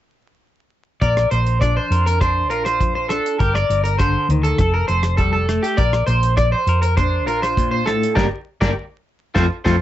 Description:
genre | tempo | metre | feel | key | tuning
highlife guitar band | 101 BPM | 4/4 | straight | Bb major | A4 = 438 Hz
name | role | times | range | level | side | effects
clean electric guitar | accompaniment | 1.0-9.8 s | G2 to Bb4 | -25 LUFS | left 6 dB | harmonic tremolo
electric guitar at the edge of break-up | arpeggios | 1.0-9.8 s | F4 to D5 | -20 LUFS | right 1 dB | lush chorus, slapback echo
hollow-body short-scale fingered electric bass | bass | 1.0-9.8 s | F1 to F2 | -20 LUFS | equal | none
damped 70s drum kit | drums | 1.0-9.8 s | hi-hat, kick drum, rim click, snare drum | -22 LUFS | equal | none
room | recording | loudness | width
little or no reverb | vinyl crackle, nothing above 7.9 kHz | -16 LUFS | side -13 dB against mid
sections
1.0-9.8 A section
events
band accent 8.2-9.8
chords
1.0 Bbadd9; 3.4 Gm; 4.6 F; 5.8 Bbadd9; 8.2 Gm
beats
| 1.01 1.61 2.21 2.80 | 3.40 4.00 4.59 5.19 | 5.79 6.38 6.98 7.57 | 8.17 8.77 9.36

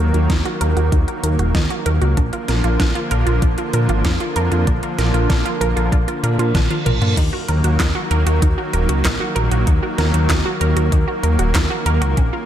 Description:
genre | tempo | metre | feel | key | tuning
synthwave | 96 BPM | 4/4 | straight | Eb minor | A4 = 440 Hz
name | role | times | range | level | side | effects
lush unison pad | sustained chords | 0.0-12.5 s | Db3 to Bb3 | -22 LUFS | right 1 dB | chorus, sidechain pumping
wide unison pluck | arpeggios | 0.0-12.4 s | Db4 to Bb4 | -25 LUFS | right 3 dB | ping-pong delay
fat analog bass | bass | 0.0-12.3 s | Eb1 to Bb2 | -18 LUFS | equal | tube saturation, sidechain pumping
pop drum kit | drums | 0.1-12.3 s | crash cymbal, handclaps, hi-hat, snare drum, toms | -24 LUFS | equal | overdrive
electronic kick drum | drums | 0.3-12.3 s | none | -19 LUFS | equal | overdrive
reverse cymbal | sound effects | 6.4-7.2 s | none | -30 LUFS | right 4 dB | none
room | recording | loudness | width
light reverb, digital ambience | none | -15 LUFS | side -10 dB against mid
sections
0.0-7.2 A section; 7.2-12.5 B section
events
filter sweep on synth arpeggio sound 0.0-7.2; reverse cymbal 6.4-7.2; drum fill 6.5-7.2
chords
0.0 Ebm; 2.2 Bb; 7.2 Ebm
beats
0.30 0.92 1.55 | 2.17 2.80 3.42 4.05 | 4.67 5.30 5.92 6.55 | 7.17 7.80 8.42 9.05 | 9.67 10.30 10.92 11.55 | 12.17

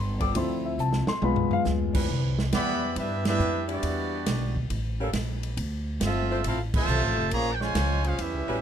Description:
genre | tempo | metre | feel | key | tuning
jazz, big band swing | 138 BPM | 4/4 | swing 67% on 8ths | C major | A4 = 441 Hz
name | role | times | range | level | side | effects
warm grand piano | accompaniment | 0.0-2.1 s | F3 to D6 | -27 LUFS | left 3 dB | none
upright bass | bass | 0.0-8.6 s | F1 to G2 | -29 LUFS | equal | none
warm saxophone section | sustained chords | 0.2-8.6 s | E3 to C5 | -34 LUFS | equal | none
swinging big-band drum kit | drums | 0.2-8.3 s | crash cymbal, hi-hat, kick drum, ride cymbal, snare drum, toms | -31 LUFS | right 1 dB | none
bright trumpet section | melody | 2.5-8.6 s | B3 to B5 | -29 LUFS | right 2 dB | none
bright trombone section | second line | 2.5-8.6 s | C3 to F4 | -31 LUFS | equal | none
room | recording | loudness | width
light reverb | dark, warm production | -24 LUFS | side -9 dB against mid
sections
0.0-2.1 A section; 2.1-8.6 B section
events
grand piano solo 0.0-2.1; drum fill 0.8-1.7; band accent 3.2, 6.7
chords
0.4 Dm7; 1.2 Bdim7; 2.1 Cmaj9; 3.8 Em9; 4.7 A5; 5.6 Dm9; 7.3 Bbm9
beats
| 0.35 0.79 1.22 1.66 | 2.10 2.53 2.97 3.40 | 3.84 4.27 4.71 5.14 | 5.58 6.01 6.45 6.88 | 7.32 7.75 8.19

